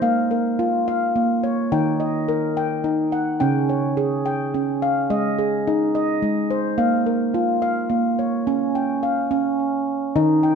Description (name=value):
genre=world meditative, meditative tuned percussion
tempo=71 BPM (dotted quarters)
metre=6/8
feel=straight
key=unclear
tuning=A4 = 440 Hz
part: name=handpan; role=solo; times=0.0-10.6 s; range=Db3 to G5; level=-19 LUFS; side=equal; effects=ping-pong delay
room=wet echo chamber reverb, RT60 1.7 s, small room ambience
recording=none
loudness=-19 LUFS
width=side -6 dB against mid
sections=0.0-8.5 A section; 8.5-10.6 B section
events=none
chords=0.0 Bbm; 1.7 Ebm; 3.4 Db; 5.1 Ab; 6.8 Bbm; 8.5 Db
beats=| 0.03 0.87 | 1.72 2.56 | 3.41 4.26 | 5.10 5.95 | 6.79 7.63 | 8.48 9.32 | 10.17